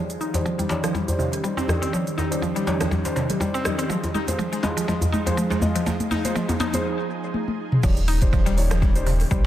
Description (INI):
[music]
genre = afro house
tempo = 122 BPM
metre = 4/4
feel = swing 55% on 16ths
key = unclear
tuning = A4 = 441 Hz
[part]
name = ethereal airy pad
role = sustained chords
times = 0.0-9.5 s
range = Eb3 to Ab4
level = -30 LUFS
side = right 2 dB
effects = ensemble chorus, built-in reverb, sidechain pumping
[part]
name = mallet-like synth pluck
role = arpeggios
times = 0.0-9.4 s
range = C3 to Eb4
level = -27 LUFS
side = equal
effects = chorus, sidechain pumping, dub echo
[part]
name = felt-muted upright piano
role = stabs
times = 0.0-9.5 s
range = G3 to Eb5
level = -30 LUFS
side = left 2 dB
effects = sidechain pumping, low-pass filter, dub echo
[part]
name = afro-pop drum kit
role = drums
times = 0.1-9.4 s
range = crash cymbal, hi-hat, rim click, shaker, toms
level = -27 LUFS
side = left 1 dB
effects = studio reverb, dub echo
[part]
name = djembe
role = percussion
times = 0.3-6.8 s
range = none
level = -27 LUFS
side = equal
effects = none
[part]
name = electronic kick drum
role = drums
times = 0.5-9.4 s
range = none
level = -23 LUFS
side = equal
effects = high-pass filter on kick, studio reverb, high-pass filter on room
[part]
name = round analog bass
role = bass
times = 7.8-9.5 s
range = Eb1 to Bb1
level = -22 LUFS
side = equal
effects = sidechain pumping
[sound]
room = moderate spring reverb, RT60 2.7 s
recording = echo-heavy mix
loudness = -20 LUFS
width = side -12 dB against mid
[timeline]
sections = 0.0-7.8 A section; 7.8-9.5 B section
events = build-up 0.0-7.8; drum fill 0.0-6.9, 7.3-7.8; filter sweep on synth arpeggio sound 0.0-7.8; filter sweep on felt piano 0.0-7.8; filter sweep on ambient pad 0.0-7.8; drop 7.8-9.5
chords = 0.0 Eb7; 3.9 Fm7; 7.8 Eb7